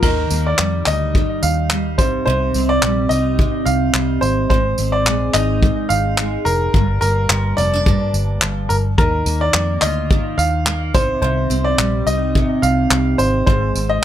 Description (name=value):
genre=acoustic pop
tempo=107 BPM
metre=4/4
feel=swing 55% on 16ths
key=Eb major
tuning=A4 = 439 Hz
part: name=clear upright piano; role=melody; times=0.0-14.0 s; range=Bb4 to F5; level=-20 LUFS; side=equal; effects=tape echo
part: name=picked steel-string acoustic guitar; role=accompaniment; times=0.0-14.0 s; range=G2 to Bb4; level=-21 LUFS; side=right 1 dB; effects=double-tracked left and right
part: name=vintage muted fingered electric bass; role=bass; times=0.0-14.0 s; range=F1 to F2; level=-20 LUFS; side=equal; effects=none
part: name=vintage brush drum kit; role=drums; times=0.0-13.9 s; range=crash cymbal, handclaps, kick drum, tambourine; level=-18 LUFS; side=equal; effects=none
room=little or no reverb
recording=none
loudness=-15 LUFS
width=side -11 dB against mid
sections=0.0-14.0 A section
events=none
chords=0.0 Ebadd9; 2.0 Cm; 4.5 Ab; 6.7 Gm7; 9.0 Ebsus2; 10.9 Cm; 13.5 Ab